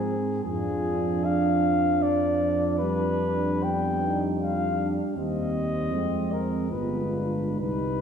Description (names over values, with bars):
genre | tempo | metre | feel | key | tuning
classical, hymn-like piece for brass band | 76 BPM | 3/4 | uneven beats, rubato | unclear | A4 = 440 Hz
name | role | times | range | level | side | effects
mellow flugelhorn | melody | 0.0-8.0 s | Ab4 to G5 | -28 LUFS | left 2 dB | none
dark French horn section | second line | 0.0-8.0 s | C4 to F4 | -32 LUFS | right 4 dB | none
dark euphonium | accompaniment | 0.0-8.0 s | F3 to Ab3 | -32 LUFS | equal | none
mellow trombone section | accompaniment | 0.0-8.0 s | B3 to F4 | -31 LUFS | right 1 dB | none
dark tuba | bass | 0.0-8.0 s | G1 to Ab2 | -30 LUFS | equal | none
room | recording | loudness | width
wet church reverb, RT60 2.9 s | heard from further back in the room | -23 LUFS | side -7 dB against mid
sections
0.0-8.0 A section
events
none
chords
0.4 Ddim/F; 2.8 G7/F; 5.2 Cm/Eb; 5.9 Fm; 6.7 G7b9